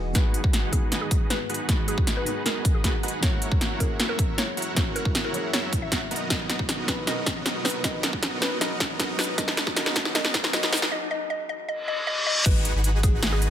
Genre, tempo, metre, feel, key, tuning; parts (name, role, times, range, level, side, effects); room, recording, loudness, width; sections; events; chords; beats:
future bass; 156 BPM; 4/4; half-time; G# minor; A4 = 438 Hz
mallet-like synth pluck; melody; 0.0-13.5 s; G#4 to E5; -33 LUFS; left 1 dB; chorus, sidechain pumping, ping-pong delay
felt-muted upright piano; accompaniment; 0.0-12.5 s; D#3 to D#5; -36 LUFS; right 1 dB; sidechain pumping, ping-pong delay
shimmering ambient pad; sustained chords; 0.0-10.9 s; E2 to A#5; -39 LUFS; equal; chorus, built-in reverb, phaser, sidechain pumping
saturated sub bass; bass; 0.0-0.1, 12.5-13.5 s; E1 to G#1; -24 LUFS; equal; sidechain pumping
dense compressed supersaw; riff; 0.1-13.5 s; B3 to F#5; -32 LUFS; right 1 dB; sidechain pumping, low-pass filter
big-room dance drum kit; drums; 0.1-13.5 s; crash cymbal, hi-hat, snare drum; -26 LUFS; equal; low-pass filter on hats, low-pass filter on snare, low-pass filter on cymbals, low-pass filter on room
electronic kick drum; drums; 0.1-13.1 s; -25 LUFS; equal
riser and reverse cymbal; sound effects; 8.8-12.5 s; -30 LUFS; equal
light reverb, digital ambience; high-pass filter; -22 LUFS; side -10 dB against mid
0.1-12.5 A section; 12.5-13.5 B section
build-up 0.1-12.5; drum fill 0.1-10.9; filter sweep on synth pluck 0.1-12.5; filter sweep on ambient pad 0.1-12.5; filter sweep 0.1-12.5; break 10.9-12.5; reverse cymbal 11.8-12.5; drop 12.5-13.5
0.1 G#m7; 3.2 F#7; 6.1 Bmaj7; 9.2 Emaj9; 12.5 G#m7
| 0.15 0.53 0.92 1.30 | 1.69 2.07 2.46 2.84 | 3.23 3.61 4.00 4.38 | 4.76 5.15 5.53 5.92 | 6.30 6.69 7.07 7.46 | 7.84 8.23 8.61 9.00 | 9.38 9.77 10.15 10.53 | 10.92 11.30 11.69 12.07 | 12.46 12.84 13.23